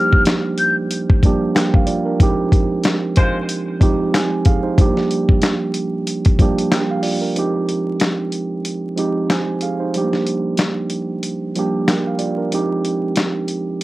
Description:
hip hop, boom-bap hip-hop; 93 BPM; 4/4; swing 57% on 16ths; F dorian; A4 = 440 Hz
breathy mellow jazz flute; melody; 0.0-0.8 s; F6 to G6; -18 LUFS; left 2 dB; high-pass filter, low-pass filter, cassette tape
mellow tine electric piano; accompaniment; 0.0-13.8 s; F3 to Ab5; -19 LUFS; right 2 dB; medium stereo tremolo, cassette tape, high-pass filter, low-pass filter
dusty soul sampler-style drum kit; drums; 0.1-13.8 s; handclaps, hi-hat, kick drum, snare drum; -16 LUFS; equal
warm horn section; stabs; 3.2-3.4 s; Ab3 to C5; -23 LUFS; left 1 dB; high-pass filter, low-pass filter, cassette tape, tape echo
moderate booth ambience, RT60 0.3 s; home recording on cassette, vinyl crackle; -16 LUFS; side -18 dB against mid
0.0-7.4 A section; 7.4-13.8 B section
break 7.4-13.8
0.0 Gm7; 2.2 Fm7

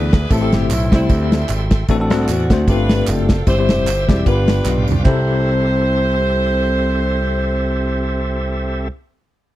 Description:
uptempo gospel; 152 BPM; 4/4; swing 56% on 8ths; C major; A4 = 441 Hz
bright saxophone section; melody; 0.0-8.9 s; G3 to C5; -21 LUFS; right 1 dB
bell-like tine electric piano; accompaniment; 0.0-8.9 s; C2 to D5; -21 LUFS; left 3 dB; medium stereo tremolo
bright tonewheel organ; sustained chords; 0.0-8.9 s; C4 to E6; -27 LUFS; right 2 dB; slow rotary speaker
modern bright picked electric bass; bass; 0.0-8.9 s; E1 to E2; -19 LUFS; equal
modern studio drum kit; drums; 0.1-5.2 s; crash cymbal, kick drum, ride cymbal, snare drum, toms; -16 LUFS; equal
tambourine and handclaps; percussion; 0.1-5.3 s; -33 LUFS; right 10 dB
little or no reverb; dry, close 1970s-style studio recording; -14 LUFS; side -14 dB against mid
0.0-5.1 A section; 5.1-8.2 B section
drum fill 4.7-5.1
0.3 Am7; 1.9 D7/A; 2.7 G9sus4; 3.5 C; 4.3 G7; 5.1 C6

